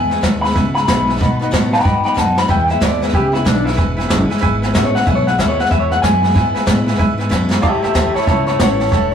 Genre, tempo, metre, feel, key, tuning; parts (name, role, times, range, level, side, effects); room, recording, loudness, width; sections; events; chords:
rockabilly; 186 BPM; 4/4; swing 64% on 8ths; E major; A4 = 440 Hz
electric guitar through a small old amp; melody; 0.0-9.1 s; D4 to B5; -17 LUFS; left 2 dB
bright upright piano; accompaniment; 0.0-9.1 s; B4 to A5; -23 LUFS; right 4 dB
picked steel-string acoustic guitar; accompaniment; 0.0-9.1 s; E2 to F#4; -22 LUFS; left 2 dB
upright bass; bass; 0.0-9.1 s; E1 to B2; -20 LUFS; equal
jazz brush drum kit; drums; 0.1-9.0 s; hi-hat, kick drum, snare drum; -17 LUFS; equal
moderate studio ambience, RT60 0.5 s; rough rehearsal-room recording; -13 LUFS; side -8 dB against mid
0.0-2.5 A section; 2.5-9.1 B section
drum fill 2.2-2.5, 7.3-7.6; clean electric guitar solo 2.5-9.1
0.0 E; 1.2 B; 2.5 E; 7.6 A